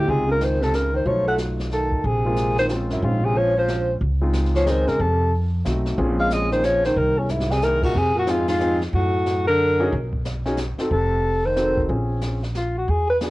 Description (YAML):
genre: jazz, small-group swing and bop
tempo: 183 BPM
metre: 3/4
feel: swing 63% on 8ths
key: Bb minor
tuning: A4 = 438 Hz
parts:
  - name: breathy alto saxophone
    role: melody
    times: 0.0-13.2 s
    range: Db4 to F#5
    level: -22 LUFS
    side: left 1 dB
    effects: plate reverb
  - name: breathy baritone saxophone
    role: second line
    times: 0.0-11.8 s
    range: E2 to A3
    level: -26 LUFS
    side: right 2 dB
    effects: cassette tape, plate reverb
  - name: upright bass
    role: bass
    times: 0.0-13.3 s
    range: F1 to Gb2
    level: -24 LUFS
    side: equal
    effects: none
  - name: warm grand piano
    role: accompaniment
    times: 0.1-13.3 s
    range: F#3 to A4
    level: -27 LUFS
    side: left 1 dB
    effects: cassette tape, plate reverb
  - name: jazz brush drum kit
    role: drums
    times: 0.1-13.3 s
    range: brushed snare drum, crash cymbal, hi-hat, kick drum, ride cymbal, snare drum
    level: -32 LUFS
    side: equal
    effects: cassette tape
room: moderate studio reverb, RT60 0.6 s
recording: home recording on cassette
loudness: -19 LUFS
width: side -19 dB against mid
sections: 0.0-4.0 A section; 4.0-11.9 B section; 11.9-13.3 A section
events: drum fill 7.3-7.6; band accent 8.4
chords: 0.1 Dbmaj9; 1.1 B7#11; 2.0 Bbm9; 4.0 Dbmaj9; 5.0 F7b9; 6.0 Bbm7; 7.0 C7alt; 8.0 Fm7; 8.9 Gb; 9.9 B; 10.9 F7b9; 11.9 Bbm9